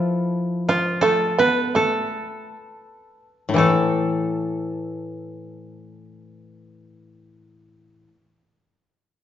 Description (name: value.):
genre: japanese traditional, Japanese chamber music.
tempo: 54-89 BPM.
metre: 2/4.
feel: rubato.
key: unclear.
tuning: A4 = 440 Hz.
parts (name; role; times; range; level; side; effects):
koto; melody; 0.0-8.1 s; F4 to B4; -23 LUFS; right 1 dB; none.
koto; accompaniment; 0.0-1.4, 3.5-8.1 s; A2 to A3; -22 LUFS; left 3 dB; none.
shamisen; second line; 0.7-8.1 s; F3 to B3; -23 LUFS; right 4 dB; none.
room: wet recital hall reverb, RT60 1.3 s.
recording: recorded in a church or concert hall, nothing above 7.6 kHz.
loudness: -19 LUFS.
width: side -10 dB against mid.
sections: 0.0-3.6 A section; 3.6-7.8 B section.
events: slowing down 0.3-3.6.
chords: none.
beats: | 0.34 1.02 | 1.76 2.60 | 3.60 4.67 | 5.71 6.76.